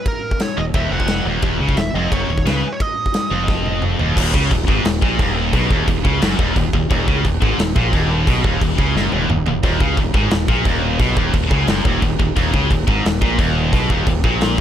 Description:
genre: heavy metal.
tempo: 176 BPM.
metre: 4/4.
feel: straight.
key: Eb minor.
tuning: A4 = 440 Hz.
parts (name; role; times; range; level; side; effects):
dark smooth lead guitar; melody; 0.0-3.8 s; Bb4 to Gb5; -25 LUFS; right 2 dB; overdrive, tape echo.
big rock drum kit; drums; 0.1-14.6 s; crash cymbal, kick drum, ride cymbal, snare drum, toms; -19 LUFS; equal; none.
heavy high-gain guitar; riff; 0.6-14.6 s; Eb2 to Db3; -23 LUFS; left 12 dB; distortion.
heavy high-gain guitar; riff; 0.6-14.6 s; Eb2 to Db3; -23 LUFS; right 11 dB; distortion.
sludgy distorted guitar; riff; 0.6-14.6 s; Eb2 to Db3; -25 LUFS; equal; overdrive.
growling fingered electric bass; bass; 0.6-14.6 s; Eb1 to Db2; -21 LUFS; equal; overdrive.
room: small room ambience.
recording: dark, warm production.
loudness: -15 LUFS.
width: side -10 dB against mid.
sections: 0.0-4.2 A section; 4.2-14.6 B section.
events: drum fill 3.5-4.2, 9.0-9.6; half time 4.2-14.6.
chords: 0.0 Ebm.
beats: | 0.06 0.40 0.75 1.09 | 1.43 1.77 2.12 2.46 | 2.80 3.15 3.49 3.83 | 4.17 4.51 4.86 5.20 | 5.54 5.88 6.22 6.56 | 6.90 7.25 7.59 7.93 | 8.27 8.61 8.95 9.29 | 9.63 9.98 10.32 10.66 | 11.00 11.34 11.68 12.02 | 12.37 12.71 13.05 13.39 | 13.73 14.07 14.41.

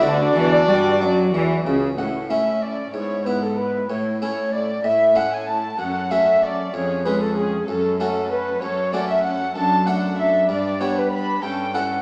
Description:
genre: classical, baroque-style concerto movement with solo episodes.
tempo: 64 BPM (dotted quarters).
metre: 6/8.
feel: straight.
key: A major.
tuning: A4 = 439 Hz.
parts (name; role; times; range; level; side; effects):
concert flute; melody; 0.0-12.0 s; G#4 to B5; -24 LUFS; equal; none.
rich chamber violin section; melody; 0.0-12.0 s; E4 to D5; -33 LUFS; equal; none.
warm chamber violin section; second line; 0.0-11.8 s; D4 to B5; -30 LUFS; equal; none.
harpsichord; accompaniment; 0.0-12.0 s; E#2 to A4; -30 LUFS; equal; none.
warm chamber viola section; accompaniment; 0.0-12.0 s; A3 to F#4; -31 LUFS; equal; none.
dark studio double bass section; bass; 0.0-2.0 s; C#2 to G2; -29 LUFS; equal; none.
rich chamber cello section; bass; 0.0-12.0 s; E#2 to G3; -28 LUFS; equal; none.
room: wet recital hall reverb, RT60 1.6 s.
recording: small speaker sound.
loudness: -21 LUFS.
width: mono.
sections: 0.0-2.0 A section; 2.0-12.0 B section.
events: none.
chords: 0.0 D; 2.0 A; 2.9 E/G#; 3.9 A; 5.8 F#m; 6.7 C#/E#; 7.7 F#m; 9.6 D/F#; 10.5 G; 11.4 A7/G.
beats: | 0.03 1.01 | 1.98 2.94 | 3.90 4.84 | 5.79 6.74 | 7.68 8.62 | 9.55 10.49 | 11.44.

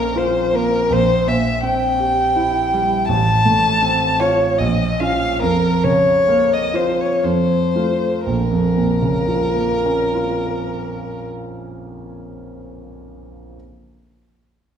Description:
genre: classical, romantic duo for violin and grand piano.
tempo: 56-83 BPM.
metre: 3/4.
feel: rubato.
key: Bb minor.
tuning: A4 = 440 Hz.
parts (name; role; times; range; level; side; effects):
rich violin; melody; 0.0-11.3 s; Bb4 to A5; -18 LUFS; left 2 dB; none.
clear concert grand piano; accompaniment; 0.0-13.6 s; A1 to Bb4; -19 LUFS; right 2 dB; none.
room: wet recital hall reverb, RT60 1.4 s.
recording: heard from further back in the room.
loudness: -15 LUFS.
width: side -8 dB against mid.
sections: 0.0-8.3 A section; 8.3-11.3 B section.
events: slowing down 2.0-8.3.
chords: 0.0 Bbm; 0.9 C7/Bb; 3.1 F/A; 4.6 Bbm; 5.4 Bbm/F; 7.2 F; 8.3 Bbm.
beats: 0.16 | 0.90 1.63 2.35 | 3.08 3.82 4.59 | 5.41 6.28 7.24 | 8.28 9.29 10.31.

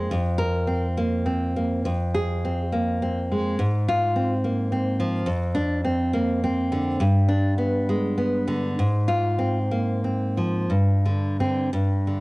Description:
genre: romantic piece for solo classical guitar.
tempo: 59-72 BPM.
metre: 2/4.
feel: rubato.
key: F minor.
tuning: A4 = 439 Hz.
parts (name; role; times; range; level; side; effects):
nylon-string guitar; solo; 0.0-12.2 s; F2 to Bb4; -21 LUFS; equal; cassette tape.
room: light reverb, small room reverb.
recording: home recording on cassette.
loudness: -21 LUFS.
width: side -22 dB against mid.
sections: 0.0-12.2 A section.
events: none.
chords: 0.1 Fsus4; 1.9 Fm; 3.6 Fm/Ab; 5.3 Bbadd9/F; 7.0 G; 8.8 Fm/Ab; 10.7 Gsus4.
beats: | 0.09 0.97 | 1.85 2.72 | 3.59 4.44 | 5.28 6.15 | 7.01 7.88 | 8.78 9.71 | 10.70 11.71.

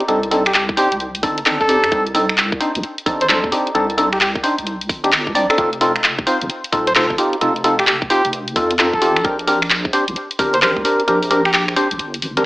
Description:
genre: UK garage, two-step garage.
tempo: 131 BPM.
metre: 4/4.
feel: swing 64% on 16ths.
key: C dorian.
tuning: A4 = 439 Hz.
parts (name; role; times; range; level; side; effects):
percussive organ stab; stabs; 0.0-12.4 s; C4 to D5; -18 LUFS; equal; lush chorus, tape echo.
garage drum kit; drums; 0.0-12.4 s; finger snaps, handclaps, hi-hat; -18 LUFS; equal; studio reverb.
deep soft wobble bass; bass; 0.1-12.4 s; Eb1 to F2; -27 LUFS; equal; chorus.
trumpet with bucket mute; melody; 0.5-11.6 s; G4 to C5; -20 LUFS; equal; tape echo.
electronic kick drum; drums; 0.7-10.8 s; none; -23 LUFS; equal; studio reverb.
room: wet plate reverb, RT60 1.0 s, digital ambience.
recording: dreamy mix soaked in reverb, AM radio sound.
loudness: -14 LUFS.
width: side -19 dB against mid.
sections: 0.0-12.5 A section.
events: kick drops out 11.1-12.5.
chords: 0.0 Cm69; 5.6 F7; 9.2 Bb69.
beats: | 0.08 0.54 1.00 1.46 | 1.92 2.37 2.83 3.29 | 3.75 4.21 4.67 5.12 | 5.58 6.04 6.50 6.96 | 7.41 7.87 8.33 8.79 | 9.24 9.70 10.16 10.62 | 11.08 11.54 11.99.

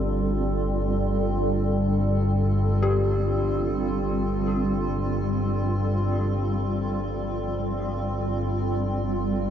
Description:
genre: dark ambient drone.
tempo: free time.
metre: none.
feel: none.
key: unclear.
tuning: A4 = 440 Hz.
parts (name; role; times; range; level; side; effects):
granular cloud pad; sustained chords; 0.0-9.5 s; G3 to A4; -27 LUFS; right 1 dB; built-in reverb.
dark detuned synth bell; arpeggios; 0.0-9.5 s; C4 to G4; -34 LUFS; left 3 dB; chorus, diffuse ambient delay.
analog drone; drone; 0.0-9.5 s; G1 to G2; -25 LUFS; equal; chorus.
room: wet huge ambient reverb, RT60 8.4 s.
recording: dark, warm production, nothing above 7.6 kHz.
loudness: -22 LUFS.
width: side -9 dB against mid.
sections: 0.0-9.5 A section.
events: none.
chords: 0.0 Gsus2.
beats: free time.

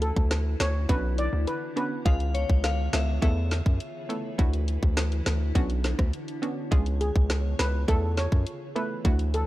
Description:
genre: dancehall.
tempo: 103 BPM.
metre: 4/4.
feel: straight.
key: unclear.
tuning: A4 = 439 Hz.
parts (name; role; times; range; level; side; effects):
steel pan; melody; 0.0-1.9, 7.0-9.5 s; G#4 to D5; -32 LUFS; equal; none.
hollow square pluck; accompaniment; 0.0-9.5 s; G#3 to A4; -33 LUFS; right 3 dB; chorus.
granular cloud pad; sustained chords; 0.0-9.5 s; D3 to C#5; -38 LUFS; left 2 dB; built-in reverb, sidechain pumping.
hard-hitting 808-style bass; bass; 0.0-9.4 s; B1 to F#2; -26 LUFS; equal; none.
island pop drum kit; drums; 0.0-9.5 s; hi-hat, kick drum, rim click, snare drum; -26 LUFS; equal; none.
glassy synth bell; second line; 2.1-4.3 s; C#5 to E#5; -34 LUFS; left 5 dB; chorus, tape echo.
room: digital ambience.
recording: dark, warm production.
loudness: -24 LUFS.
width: side -16 dB against mid.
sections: 0.0-9.5 A section.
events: none.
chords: 0.0 Dadd9; 0.9 Bmadd9; 2.1 C#; 3.2 Esus4; 4.4 Dadd9; 5.6 Bmadd9; 6.7 C#; 7.9 Esus4.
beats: 0.31 0.89 1.47 | 2.06 2.64 3.22 3.80 | 4.39 4.97 5.55 6.13 | 6.72 7.30 7.88 8.46 | 9.05.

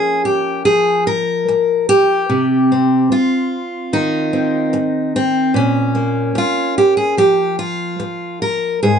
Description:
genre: folk, solo fingerstyle acoustic guitar.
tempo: 73 BPM.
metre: 4/4.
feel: rubato.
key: Bb dorian.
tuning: A4 = 440 Hz.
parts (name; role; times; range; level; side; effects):
fingerpicked steel-string acoustic guitar; solo; 0.0-9.0 s; Ab2 to Bb4; -14 LUFS; equal; none.
room: moderate studio ambience, RT60 0.5 s.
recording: nothing above 10.3 kHz.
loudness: -14 LUFS.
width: side -7 dB against mid.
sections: 0.0-9.0 A section.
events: none.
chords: 0.0 Bbm; 2.3 Cm; 5.5 Bbm.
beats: 0.65 1.47 | 2.29 3.10 3.91 4.72 | 5.54 6.36 7.18 8.00 | 8.83.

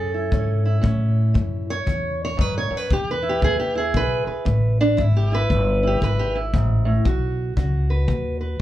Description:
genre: acoustic country blues, solo or duo.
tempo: 116 BPM.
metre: 4/4.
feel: swing 63% on 8ths.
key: E major.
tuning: A4 = 442 Hz.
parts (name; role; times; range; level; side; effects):
fingerpicked steel-string acoustic guitar; melody; 0.0-8.6 s; E2 to C#5; -23 LUFS; right 1 dB; none.
upright bass; bass; 0.0-8.6 s; G1 to A2; -21 LUFS; equal; none.
kick drum; drums; 0.3-8.2 s; none; -26 LUFS; left 2 dB; none.
room: moderate studio ambience, RT60 0.5 s.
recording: heard from further back in the room.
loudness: -18 LUFS.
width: side -13 dB against mid.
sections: 0.0-8.6 A section.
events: none.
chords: 0.0 A; 2.9 E; 7.0 B.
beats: 0.31 | 0.83 1.35 1.87 2.38 | 2.90 3.42 3.94 4.46 | 4.97 5.49 6.01 6.53 | 7.04 7.56 8.08 8.60.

